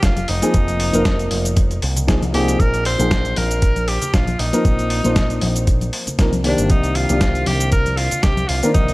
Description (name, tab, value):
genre	nu-disco, nu disco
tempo	117 BPM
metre	4/4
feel	swing 55% on 16ths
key	unclear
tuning	A4 = 440 Hz
part	bright tenor saxophone	melody	0.0-8.9 s	D4 to C5	-23 LUFS	equal	none
part	dark concert grand piano	accompaniment	0.0-8.9 s	Eb3 to C5	-22 LUFS	left 1 dB	sidechain pumping
part	picked electric bass with an envelope filter	bass	0.0-8.9 s	F1 to C2	-21 LUFS	equal	none
part	dusty soul sampler-style drum kit	drums	0.0-8.9 s	hi-hat, shaker, snare drum	-24 LUFS	equal	studio reverb
part	electronic kick drum	drums	0.0-8.9 s	none	-17 LUFS	equal	studio reverb
part	congas	percussion	0.2-8.9 s	none	-28 LUFS	left 2 dB	none
room	small room ambience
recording	dry, gritty hardware recording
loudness	-15 LUFS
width	side -20 dB against mid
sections	0.0-8.9 A section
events	none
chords	0.0 F7sus4; 2.6 Bb7sus4; 6.4 Cm7